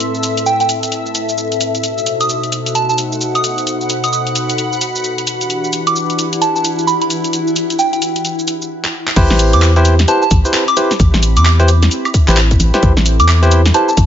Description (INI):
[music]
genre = UK garage, two-step garage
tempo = 131 BPM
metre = 4/4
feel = swing 62% on 16ths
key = A dorian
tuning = A4 = 440 Hz
[part]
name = warm analog pad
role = sustained chords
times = 0.0-14.1 s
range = A2 to B5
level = -23 LUFS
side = left 1 dB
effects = lush chorus, sidechain pumping
[part]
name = garage drum kit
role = drums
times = 0.0-14.1 s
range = crash cymbal, handclaps, hi-hat, shaker, snare drum, woodblock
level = -19 LUFS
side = equal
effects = studio reverb
[part]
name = granular cloud pad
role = texture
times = 0.0-8.7 s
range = E4 to B5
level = -21 LUFS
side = left 2 dB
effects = built-in reverb, sidechain pumping
[part]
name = soft synth bell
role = melody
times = 0.5-13.9 s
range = G5 to D#6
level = -18 LUFS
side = right 2 dB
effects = chorus, phaser, tape echo
[part]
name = barky tine electric piano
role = stabs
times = 9.2-13.9 s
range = E4 to C5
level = -16 LUFS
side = equal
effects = overdrive, tape echo
[part]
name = organ-like FM bass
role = bass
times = 9.2-14.1 s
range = A1 to E2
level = -11 LUFS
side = equal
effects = tube saturation
[part]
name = electronic kick drum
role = drums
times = 9.2-14.1 s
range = none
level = -13 LUFS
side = equal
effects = studio reverb
[sound]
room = light reverb, digital ambience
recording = nothing above 7.6 kHz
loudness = -12 LUFS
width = side -9 dB against mid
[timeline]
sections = 0.0-9.2 A section; 9.2-14.1 B section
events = drum fill 8.8-9.2; drop 9.2-14.1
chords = 0.0 Amadd9; 1.8 B7b9; 5.3 Em7; 9.2 Am9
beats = | 0.00 0.46 0.92 1.38 | 1.84 2.29 2.75 3.21 | 3.67 4.13 4.58 5.04 | 5.50 5.96 6.42 6.87 | 7.33 7.79 8.25 8.71 | 9.16 9.62 10.08 10.54 | 11.00 11.46 11.91 12.37 | 12.83 13.29 13.74